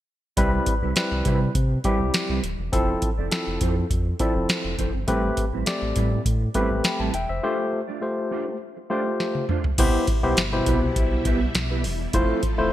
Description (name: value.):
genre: early-eighties boogie funk.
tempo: 102 BPM.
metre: 4/4.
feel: straight.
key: unclear.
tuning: A4 = 439 Hz.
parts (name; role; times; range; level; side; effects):
barky tine electric piano; accompaniment; 0.4-12.7 s; B2 to B5; -25 LUFS; left 2 dB; overdrive.
mellow electric guitar; riff; 0.4-12.7 s; G3 to D5; -30 LUFS; right 4 dB; ensemble chorus.
sub bass with octave; bass; 0.4-12.7 s; D1 to C3; -26 LUFS; equal; none.
booming analog drum machine; drums; 0.4-12.6 s; crash cymbal, hi-hat, kick drum, snare drum, toms; -24 LUFS; equal; gated reverb.
string machine, violins; sustained chords; 9.8-12.7 s; B2 to A4; -31 LUFS; left 1 dB; ensemble chorus.
room: light reverb, digital ambience.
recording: bright 1980s-style digital production.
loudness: -21 LUFS.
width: side -13 dB against mid.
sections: 0.4-9.8 A section; 9.8-12.7 B section.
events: break 7.4-9.8; drum fill 9.2-9.8.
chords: 0.4 Cmaj7; 2.7 Fmaj7; 5.1 Am9; 7.4 G9sus4; 9.8 Cmaj7; 12.1 Fmaj7.